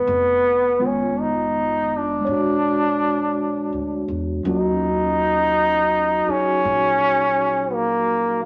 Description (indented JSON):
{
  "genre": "jazz ballad",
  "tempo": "55 BPM",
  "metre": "4/4",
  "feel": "swing 67% on 8ths",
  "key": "Eb minor from 4.4 s",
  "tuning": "A4 = 441 Hz",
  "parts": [
    { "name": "bright trombone", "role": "melody", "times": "0.0-8.4 s", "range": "Bb3 to Eb4", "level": "-21 LUFS", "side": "equal", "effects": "none" },
    { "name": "mellow tine electric piano", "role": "accompaniment", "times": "0.0-8.5 s", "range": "Eb3 to C#5", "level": "-26 LUFS", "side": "equal", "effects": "none" },
    { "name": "upright bass", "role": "bass", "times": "0.0-8.5 s", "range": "F1 to E2", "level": "-36 LUFS", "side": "equal", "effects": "none" }
  ],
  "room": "moderate studio reverb, RT60 0.9 s",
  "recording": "none",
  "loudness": "-20 LUFS",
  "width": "mono",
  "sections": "0.0-4.4 A section; 4.4-8.5 B section",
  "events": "none",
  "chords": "0.1 Fm7b5; 2.3 Bb7alt; 4.4 Ebm11"
}